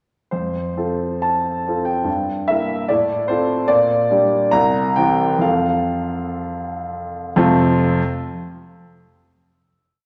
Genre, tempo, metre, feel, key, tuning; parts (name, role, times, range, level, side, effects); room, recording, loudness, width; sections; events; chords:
classical, romantic character piece for solo piano; 60-75 BPM; 2/4; rubato; F major; A4 = 439 Hz
warm grand piano; solo; 0.3-8.0 s; C2 to Bb5; -19 LUFS; equal
wet scoring stage reverb, RT60 1.7 s; -19 LUFS; mono
0.3-7.4 A section; 7.4-9.1 final chord
slowing down 2.9-7.4
0.3 F; 2.1 Edim/G; 2.9 F/A; 3.7 Gm/Bb; 4.5 C7; 5.4 F